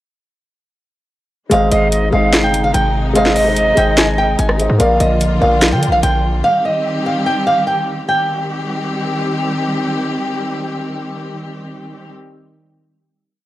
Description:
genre	hip hop, trap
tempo	146 BPM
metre	4/4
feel	half-time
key	C minor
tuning	A4 = 443 Hz
part	flamenco guitar	melody	1.5-9.3 s	Eb5 to Ab5	-17 LUFS	right 1 dB	none
part	dark concert grand piano	accompaniment	1.5-6.5 s	Ab3 to F5	-18 LUFS	left 2 dB	none
part	warm symphonic string section	sustained chords	1.5-12.1 s	C3 to G4	-21 LUFS	left 1 dB	none
part	hard-hitting 808-style bass	bass	1.5-6.4 s	G1 to D3	-17 LUFS	equal	none
part	trap drum kit	drums	1.5-6.1 s	hi-hat, rim click, snare drum	-16 LUFS	equal	none
part	silver concert flute	second line	1.7-4.8 s	Eb5 to F5	-19 LUFS	right 1 dB	analog delay
room	small room ambience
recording	dry, gritty hardware recording, transformer saturation, lossy compression artefacts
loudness	-13 LUFS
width	side -15 dB against mid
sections	1.5-8.1 hook; 8.1-11.4 final chord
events	none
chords	1.5 Ab; 4.8 Bb; 6.4 Cm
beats	| 1.51 1.92 2.33 2.74 | 3.15 3.57 3.98 4.39 | 4.80 5.21 5.62 6.03 | 6.44 6.85 7.26 7.67 | 8.09 8.50 8.91 9.32 | 9.73 10.14 10.55 10.96

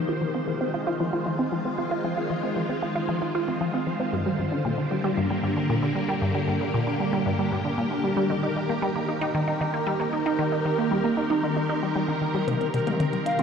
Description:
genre	ambient, sequencer-driven space music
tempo	115 BPM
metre	4/4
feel	straight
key	unclear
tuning	A4 = 439 Hz
part	phased string machine	sustained chords	0.0-13.4 s	D3 to C5	-27 LUFS	equal	ensemble chorus, phaser
part	resonant blip pluck	riff	0.0-13.4 s	G2 to F4	-26 LUFS	equal	phaser, ping-pong delay
part	minimal click drum kit	percussion	12.5-13.4 s	hi-hat, toms	-32 LUFS	left 4 dB	none
part	pulse-width lead	melody	13.3-13.4 s	F5	-24 LUFS	left 2 dB	chorus
room	wet huge ambient reverb, RT60 8.8 s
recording	worn, warbling old tape, cassette tape, warbly pitch drift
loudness	-23 LUFS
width	side -6 dB against mid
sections	0.0-13.4 A section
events	none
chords	0.0 Fm7; 4.1 Gm; 8.3 Eb6; 12.5 Cm7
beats	0.48 1.00 1.52 | 2.04 2.56 3.09 3.61 | 4.13 4.65 5.17 5.70 | 6.22 6.74 7.26 7.78 | 8.30 8.82 9.35 9.87 | 10.39 10.91 11.43 11.96 | 12.48 13.00

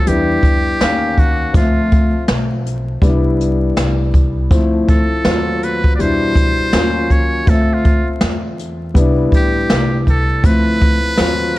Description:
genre	hip hop, jazz-hop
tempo	81 BPM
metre	4/4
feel	swing 60% on 16ths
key	D dorian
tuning	A4 = 441 Hz
part	trumpet with metal mute	melody	0.0-11.6 s	F4 to D5	-20 LUFS	right 1 dB	slapback echo
part	dark baby grand piano	accompaniment	0.0-11.6 s	B2 to F5	-19 LUFS	left 2 dB	none
part	upright bass	bass	0.0-11.6 s	A1 to F2	-20 LUFS	equal	none
part	jazz brush drum kit	drums	0.1-11.6 s	hi-hat, kick drum, snare drum	-15 LUFS	equal	vintage 12-bit sampler grit
room	studio reverb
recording	dark, warm production, vinyl crackle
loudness	-12 LUFS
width	side -17 dB against mid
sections	0.0-11.6 A section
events	muted trumpet solo 0.0-11.6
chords	0.1 Em7; 0.8 Ebm9; 1.6 Dm9; 3.0 Cmaj7; 4.5 Dm9; 5.3 D#dim7; 6.0 Em7; 6.7 Ebm9; 7.5 Dm9; 9.0 Cmaj7; 10.4 Dm9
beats	0.07 0.81 | 1.55 2.29 3.03 3.77 | 4.51 5.25 5.99 6.74 | 7.48 8.22 8.96 9.70 | 10.44 11.18

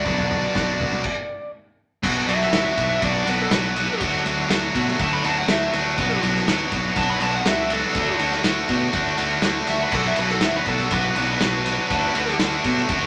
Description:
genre	indie rock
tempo	122 BPM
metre	4/4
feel	straight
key	unclear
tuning	A4 = 440 Hz
part	dark smooth lead guitar	melody	0.0-12.4 s	A4 to B5	-28 LUFS	equal	overdrive
part	distorted electric guitar	riff	0.0-13.1 s	B2 to F#4	-25 LUFS	equal	overdrive
part	growling picked electric bass	bass	0.1-13.1 s	B1 to B2	-30 LUFS	equal	overdrive
part	loose indie drum kit	drums	0.1-13.0 s	crash cymbal, kick drum, ride cymbal, snare drum, toms	-27 LUFS	equal	none
room	moderate small room reverb, RT60 0.5 s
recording	none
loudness	-21 LUFS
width	mono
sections	0.0-2.0 A section; 2.0-13.1 B section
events	stop 1.0-2.0; lead electric guitar solo 2.0-13.1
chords	0.1 Bm; 4.0 D; 6.0 Bm; 8.0 D; 9.9 Bm; 11.9 D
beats	| 0.06 0.55 1.04 1.54 | 2.03 2.53 3.02 3.52 | 4.01 4.50 5.00 5.49 | 5.98 6.48 6.97 7.46 | 7.96 8.45 8.94 9.44 | 9.93 10.42 10.92 11.41 | 11.90 12.40 12.89

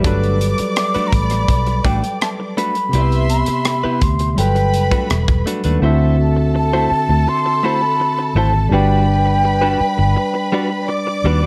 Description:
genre	lush 1970s-style soul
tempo	83 BPM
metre	4/4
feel	straight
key	G major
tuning	A4 = 439 Hz
part	rich symphonic string section	second line	0.0-11.5 s	A4 to D6	-28 LUFS	equal	none
part	barky tine electric piano	accompaniment	0.0-11.5 s	C3 to E5	-23 LUFS	equal	none
part	direct-recorded clean electric guitar	riff	0.0-11.5 s	G3 to D5	-25 LUFS	equal	none
part	vintage muted fingered electric bass	bass	0.0-11.5 s	E1 to Eb2	-19 LUFS	equal	none
part	tight funk drum kit	drums	0.0-5.8 s	hi-hat, kick drum, rim click	-23 LUFS	equal	none
part	breathy mellow concert flute	melody	0.8-10.9 s	G5 to D6	-22 LUFS	equal	tape echo
room	light reverb, studio reverb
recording	dark, warm production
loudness	-16 LUFS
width	mono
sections	0.0-5.8 A section; 5.8-11.5 B section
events	none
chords	0.0 Gmaj9; 2.9 Cmaj7; 4.4 Gmaj9; 5.8 D9; 8.7 Gmaj7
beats	| 0.04 0.76 1.48 2.21 | 2.93 3.65 4.38 5.10 | 5.82 6.55 7.27 7.99 | 8.71 9.44 10.16 10.88

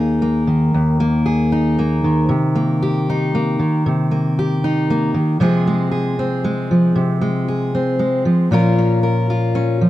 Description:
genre	folk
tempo	116 BPM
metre	3/4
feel	straight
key	Eb mixolydian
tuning	A4 = 439 Hz
part	fingerpicked steel-string acoustic guitar	solo	0.0-9.9 s	Eb2 to Bb4	-15 LUFS	equal	none
room	light reverb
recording	none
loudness	-15 LUFS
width	side -14 dB against mid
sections	0.0-9.9 A section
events	none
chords	0.0 Eb5; 2.3 Cm7; 5.4 Fm/C; 8.5 Bbm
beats	0.21 | 0.73 1.25 1.77 | 2.29 2.81 3.33 | 3.85 4.37 4.89 | 5.41 5.92 6.44 | 6.96 7.48 8.00 | 8.52 9.03 9.55

